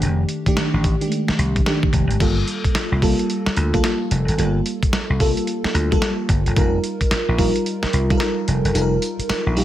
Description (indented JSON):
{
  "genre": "R&B, new jack swing",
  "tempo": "110 BPM",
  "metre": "4/4",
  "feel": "swing 63% on 16ths",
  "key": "unclear",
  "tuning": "A4 = 440 Hz",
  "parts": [
    { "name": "FM electric piano with soft pad layer", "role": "accompaniment", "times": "0.0-9.6 s", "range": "Eb3 to Bb4", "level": "-21 LUFS", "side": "equal", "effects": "chorus" },
    { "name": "vintage slap bass", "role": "bass", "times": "0.0-9.6 s", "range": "F1 to D2", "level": "-20 LUFS", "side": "equal", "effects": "none" },
    { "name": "dusty soul sampler-style drum kit", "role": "drums", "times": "0.0-9.6 s", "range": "crash cymbal, hi-hat, kick drum, snare drum, tambourine", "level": "-22 LUFS", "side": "equal", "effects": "none" }
  ],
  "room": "moderate plate reverb, RT60 1.5 s",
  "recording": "dreamy mix soaked in reverb",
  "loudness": "-17 LUFS",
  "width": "side -13 dB against mid",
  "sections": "0.0-2.2 A section; 2.2-9.6 B section",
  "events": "kick muted 8.7-9.6",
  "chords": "0.0 F13; 2.2 Gm9; 6.6 F9sus4"
}